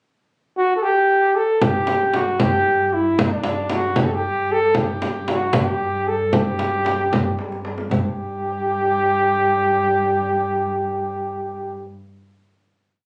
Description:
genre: Persian modal ensemble.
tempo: 76 BPM (dotted quarters).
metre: 6/8.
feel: straight.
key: unclear.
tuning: A4 = 440 Hz.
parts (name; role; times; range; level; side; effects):
breathy flugelhorn; melody; 0.6-11.8 s; D4 to A4; -21 LUFS; equal; none.
dark cello; drone; 1.6-11.9 s; G2; -32 LUFS; equal; none.
frame drum; percussion; 1.6-8.1 s; none; -24 LUFS; equal; none.
tombak; percussion; 1.6-8.1 s; none; -31 LUFS; equal; none.
room: moderate studio ambience, RT60 0.5 s.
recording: recorded on a phone in the room, studio reverb, compression.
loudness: -20 LUFS.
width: mono.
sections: 0.0-1.6 pickup bar; 1.6-7.9 A section; 7.9-11.0 final note.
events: drum fill 7.4-7.9.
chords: none.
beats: | 0.04 0.83 | 1.61 2.40 | 3.19 3.97 | 4.76 5.54 | 6.33 7.11 | 7.90 8.68 | 9.47 10.25.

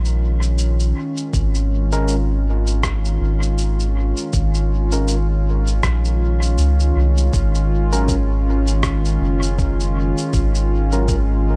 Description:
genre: ambient dub.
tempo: 80 BPM.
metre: 4/4.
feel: swing 57% on 16ths.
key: unclear.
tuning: A4 = 440 Hz.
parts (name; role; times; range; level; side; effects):
warbly tape-like pad; sustained chords; 0.0-11.6 s; Eb3 to F4; -27 LUFS; equal; chorus, built-in reverb.
soft dub sub bass; bass; 0.0-11.6 s; Gb1 to Db2; -20 LUFS; equal; tube saturation.
electronic cabasa and rim click; drums; 0.1-11.3 s; none; -31 LUFS; equal; dub echo.
electronic kick drum; drums; 1.3-11.3 s; none; -24 LUFS; equal; none.
overdriven tine electric piano; stabs; 1.9-11.1 s; Gb3 to Bb4; -30 LUFS; equal; dub echo.
room: little or no reverb.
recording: none.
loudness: -19 LUFS.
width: mono.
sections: 0.0-7.3 A section; 7.3-11.6 B section.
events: none.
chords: 0.0 Bbm7/Ab; 7.3 Ab7sus4.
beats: 0.58 | 1.33 2.08 2.83 3.58 | 4.33 5.08 5.83 6.58 | 7.33 8.09 8.84 9.59 | 10.34 11.09.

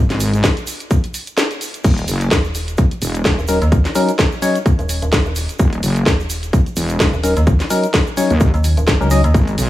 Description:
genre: bass house.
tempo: 128 BPM.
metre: 4/4.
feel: swing 56% on 16ths.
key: Eb phrygian.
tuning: A4 = 440 Hz.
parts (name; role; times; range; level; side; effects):
metallic FM bass; bass; 0.0-9.3 s; Eb1 to Eb2; -17 LUFS; equal; overdrive, sidechain pumping.
wobble bass; bass; 0.1-9.7 s; Eb1 to Eb2; -17 LUFS; equal; chorus, overdrive, sidechain pumping.
house drum kit; drums; 0.1-9.7 s; crash cymbal, hi-hat, snare drum; -21 LUFS; equal; none.
egg shaker; percussion; 0.1-9.7 s; none; -32 LUFS; right 6 dB; none.
electronic kick drum; drums; 0.4-9.4 s; none; -15 LUFS; equal; none.
percussive organ stab; stabs; 3.5-9.2 s; Gb3 to Eb5; -18 LUFS; left 2 dB; chorus, cassette tape, sidechain pumping, tape echo.
room: light reverb.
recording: small room ambience.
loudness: -14 LUFS.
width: side -15 dB against mid.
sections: 0.0-9.7 A section.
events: none.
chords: 0.0 N.C.; 1.8 Ebm7.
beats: 0.44 0.91 1.38 | 1.84 2.31 2.78 3.25 | 3.72 4.19 4.66 5.13 | 5.59 6.06 6.53 7.00 | 7.47 7.94 8.41 8.88 | 9.35.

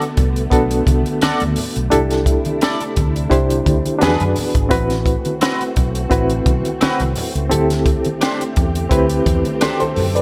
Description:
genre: lush 1970s-style soul.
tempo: 86 BPM.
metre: 4/4.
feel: swing 54% on 16ths.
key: A dorian.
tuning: A4 = 443 Hz.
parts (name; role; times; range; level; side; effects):
bright reed electric piano; accompaniment; 0.0-10.2 s; B3 to D5; -22 LUFS; equal; overdrive, medium tremolo.
soft string machine; sustained chords; 0.0-10.2 s; C3 to G#4; -30 LUFS; equal; ensemble chorus.
electric guitar at the edge of break-up; riff; 0.0-9.8 s; C4 to D5; -24 LUFS; equal; analog chorus.
compact cocktail drum kit; drums; 0.0-10.2 s; hi-hat, kick drum, snare drum; -22 LUFS; equal; none.
congas; percussion; 0.0-10.2 s; none; -30 LUFS; equal; none.
vintage muted fingered electric bass; bass; 0.2-10.2 s; G#1 to F#2; -22 LUFS; equal; none.
room: light reverb, small room ambience.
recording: none.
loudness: -17 LUFS.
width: mono.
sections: 0.0-10.2 A section.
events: none.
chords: 0.0 Bm7; 1.9 C69; 4.0 E7; 4.7 Am69; 7.5 D7sus4.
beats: 0.52 1.22 | 1.92 2.62 3.32 4.02 | 4.72 5.42 6.12 6.82 | 7.52 8.22 8.92 9.62.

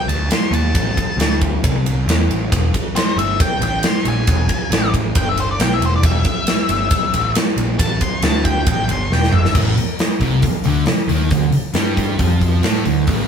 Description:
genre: blues rock power trio and southern rock.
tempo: 136 BPM.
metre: 4/4.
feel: straight.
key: unclear.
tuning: A4 = 440 Hz.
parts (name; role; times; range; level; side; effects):
octave-fuzz lead guitar; melody; 0.0-9.6 s; C5 to C6; -22 LUFS; left 3 dB; distortion.
fuzz picked electric bass; bass; 0.1-13.3 s; E1 to A2; -20 LUFS; equal; overdrive.
big rock drum kit; drums; 0.1-13.2 s; crash cymbal, hi-hat, kick drum, ride cymbal, snare drum, toms; -18 LUFS; equal; none.
thick fuzz guitar; riff; 9.6-13.3 s; A2 to A3; -18 LUFS; equal; distortion.
room: moderate studio reverb, RT60 0.5 s.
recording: band playing live in one room.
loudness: -14 LUFS.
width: side -7 dB against mid.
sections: 0.0-9.5 A section; 9.5-13.3 B section.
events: lead electric guitar solo 0.0-9.5; drum fill 9.1-9.5.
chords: 0.0 A5; 2.5 N.C.; 7.8 Amadd11; 8.7 Emadd11; 9.5 Adim; 11.3 D5.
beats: 0.30 | 0.74 1.19 1.63 2.07 | 2.51 2.95 3.39 3.83 | 4.27 4.71 5.15 5.59 | 6.03 6.47 6.91 7.35 | 7.79 8.22 8.66 9.10 | 9.54 9.98 10.42 10.86 | 11.30 11.74 12.19 12.63 | 13.07.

